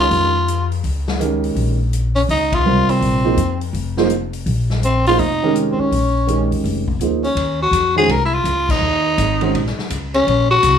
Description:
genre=modal jazz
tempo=166 BPM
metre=4/4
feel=swing 64% on 8ths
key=Bb dorian, Eb dorian from 7.4 s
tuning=A4 = 441 Hz
part: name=growling tenor saxophone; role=melody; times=0.0-10.8 s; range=C4 to Bb4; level=-16 LUFS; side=left 1 dB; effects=none
part: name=warm grand piano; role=accompaniment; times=0.0-9.5 s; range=C3 to C5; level=-19 LUFS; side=right 4 dB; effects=none
part: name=upright bass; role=bass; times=0.0-10.8 s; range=F1 to F2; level=-20 LUFS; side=left 1 dB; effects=none
part: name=swinging big-band drum kit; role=drums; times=0.1-10.7 s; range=crash cymbal, hi-hat, kick drum, ride cymbal, snare drum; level=-27 LUFS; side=left 3 dB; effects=none
room=light reverb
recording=studio ambience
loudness=-15 LUFS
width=side -8 dB against mid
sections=0.0-7.4 A section; 7.4-10.8 B section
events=band accent 2.5, 8.6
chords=0.0 Bbm11; 7.4 Eb7sus2

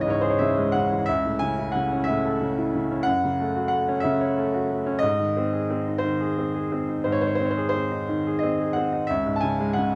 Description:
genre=classical, lyrical solo piano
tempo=60 BPM (dotted quarters)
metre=6/8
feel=rubato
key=unclear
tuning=A4 = 436 Hz
part: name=bright baby grand piano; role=solo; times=0.0-10.0 s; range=C#2 to A5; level=-24 LUFS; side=equal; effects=none
room=light reverb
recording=close, detailed microphones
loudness=-24 LUFS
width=mono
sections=0.0-10.0 A section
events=none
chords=0.0 C#m; 1.1 A/C#; 3.1 F#m; 5.0 G#; 9.1 C#m

